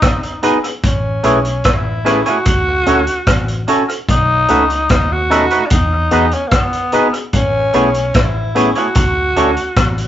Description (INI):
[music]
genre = lovers rock reggae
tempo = 74 BPM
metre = 4/4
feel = straight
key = E major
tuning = A4 = 440 Hz
[part]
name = raspy tenor saxophone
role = melody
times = 0.0-10.1 s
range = A#3 to F#4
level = -18 LUFS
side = left 1 dB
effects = none
[part]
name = vintage drum kit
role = drums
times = 0.0-10.1 s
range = hi-hat, kick drum, rim click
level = -16 LUFS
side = equal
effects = dub echo
[part]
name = barky tine electric piano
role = accompaniment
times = 0.4-9.5 s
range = B3 to B4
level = -17 LUFS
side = left 2 dB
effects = overdrive
[part]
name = twangy electric guitar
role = stabs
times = 0.4-9.5 s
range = A3 to C#5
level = -16 LUFS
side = right 3 dB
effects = none
[part]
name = vintage muted fingered electric bass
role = bass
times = 0.8-10.1 s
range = A1 to E2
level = -20 LUFS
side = equal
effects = none
[sound]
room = moderate small room ambience, RT60 0.5 s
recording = rough rehearsal-room recording, warm saturation, nothing above 7.8 kHz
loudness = -12 LUFS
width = side -11 dB against mid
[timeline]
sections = 0.0-10.1 A section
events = none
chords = 0.0 Emaj7 (rootless); 0.8 Amaj7; 2.5 Dmaj7; 4.1 B7; 5.7 Emaj7; 7.3 Amaj7; 9.0 Dmaj7